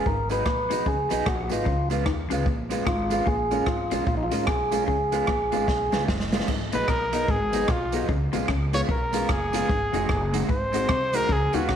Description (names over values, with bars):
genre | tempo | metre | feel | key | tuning
ska | 149 BPM | 4/4 | swing 61% on 8ths | G# dorian | A4 = 440 Hz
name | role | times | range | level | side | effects
tonewheel organ | melody | 0.0-6.0 s | D#4 to B4 | -26 LUFS | right 1 dB | stopped rotary speaker
electric guitar at the edge of break-up | accompaniment | 0.0-11.7 s | F#3 to F#4 | -32 LUFS | right 10 dB | tremolo, slapback echo
electric guitar through a small old amp | riff | 0.1-11.8 s | E#2 to D#3 | -35 LUFS | left 10 dB | spring reverb
upright bass | bass | 0.1-11.8 s | E#1 to D#2 | -30 LUFS | equal | none
swinging big-band drum kit | drums | 0.1-11.8 s | crash cymbal, hi-hat, kick drum, rim click, snare drum | -28 LUFS | equal | none
dark upright piano | stabs | 0.3-11.6 s | B3 to B4 | -33 LUFS | left 10 dB | none
tambourine | percussion | 0.3-11.6 s | none | -48 LUFS | right 10 dB | none
clear trumpet | melody | 6.7-11.8 s | E#4 to C#5 | -26 LUFS | equal | slapback echo
room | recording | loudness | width
moderate echo chamber reverb, RT60 1.9 s, small room ambience | 1960s-style stereo with parts hard left and right | -22 LUFS | side -9 dB against mid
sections
0.0-6.5 A section; 6.5-11.8 B section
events
drum fill 5.7-6.5; trumpet solo 6.5-11.8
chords
0.1 G#m7; 1.7 C#7; 3.3 A#m7; 4.9 C#7; 6.5 G#m7; 8.1 C#7; 9.7 G#7